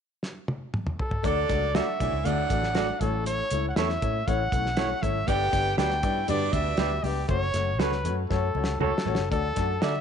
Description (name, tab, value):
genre	uptempo 1960s-style soul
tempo	119 BPM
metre	4/4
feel	straight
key	D major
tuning	A4 = 439 Hz
part	cloth-damped thuddy drum kit	drums	0.2-9.9 s	hi-hat, kick drum, snare drum, toms	-30 LUFS	equal	none
part	clear trumpet	melody	1.0-10.0 s	G4 to G5	-29 LUFS	equal	none
part	edgy saxophone section	second line	1.2-7.0 s	A2 to A4	-32 LUFS	right 10 dB	none
part	warm upright piano	accompaniment	1.2-10.0 s	A3 to D5	-31 LUFS	left 11 dB	none
part	vintage muted fingered electric bass	bass	1.2-10.0 s	F#1 to D3	-30 LUFS	equal	none
part	congas	percussion	1.2-9.2 s	none	-39 LUFS	right 11 dB	none
part	electric guitar through a small old amp	stabs	1.7-9.9 s	E4 to D5	-33 LUFS	right 11 dB	none
room	light reverb, studio ambience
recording	1960s-style stereo with parts hard left and right, nothing above 10.9 kHz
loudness	-24 LUFS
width	side -7 dB against mid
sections	0.0-1.2 A section; 1.2-9.3 B section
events	drum fill 0.2-1.2, 8.3-9.3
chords	0.0 N.C.; 1.2 D; 3.0 A; 5.3 G; 7.3 F#m; 9.3 D